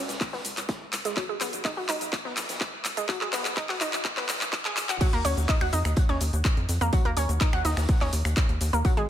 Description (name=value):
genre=progressive house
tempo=125 BPM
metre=4/4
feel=straight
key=unclear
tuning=A4 = 440 Hz
part: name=tight sequencer bass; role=bass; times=0.0-9.1 s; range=G#1 to E#2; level=-28 LUFS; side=equal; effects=sidechain pumping
part: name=big-room dance drum kit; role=drums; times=0.1-9.1 s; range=crash cymbal, finger snaps, handclaps, hi-hat, shaker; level=-30 LUFS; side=left 1 dB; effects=overdrive, sidechain pumping on hats, studio reverb, sidechain pumping on perc, sidechain pumping on cymbals
part: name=raw garage drum kit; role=drums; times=0.1-9.0 s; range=hi-hat, snare drum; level=-41 LUFS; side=right 1 dB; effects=none
part: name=electronic kick drum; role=drums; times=0.2-8.9 s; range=none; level=-25 LUFS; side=equal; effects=studio reverb
part: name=analog pluck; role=arpeggios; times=0.3-9.0 s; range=F#3 to F#5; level=-30 LUFS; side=equal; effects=chorus, sidechain pumping, dub echo
room=light reverb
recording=dense, heavily limited modern master, high-pass filter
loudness=-24 LUFS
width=side -11 dB against mid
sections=0.0-5.0 A section; 5.0-9.1 B section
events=build-up 0.0-5.0; drum fill 0.0-5.0; filter sweep on synth arpeggio sound 0.0-5.0; drop 5.0-9.1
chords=0.0 C#7(no3); 1.2 G#m7/B (rootless); 5.0 D#m7